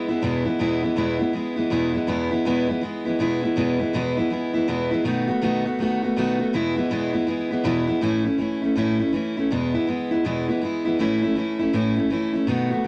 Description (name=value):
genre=rock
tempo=162 BPM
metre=4/4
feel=swing 64% on 8ths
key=E major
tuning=A4 = 441 Hz
part: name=picked steel-string acoustic guitar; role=solo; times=0.0-12.9 s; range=E2 to F#4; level=-23 LUFS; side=equal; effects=none
room=moderate studio ambience, RT60 0.5 s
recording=nothing above 10.5 kHz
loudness=-23 LUFS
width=mono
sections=0.0-8.0 A section; 8.0-12.9 B section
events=none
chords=0.0 E; 5.1 B7; 6.5 E; 8.0 A; 9.5 E; 11.0 A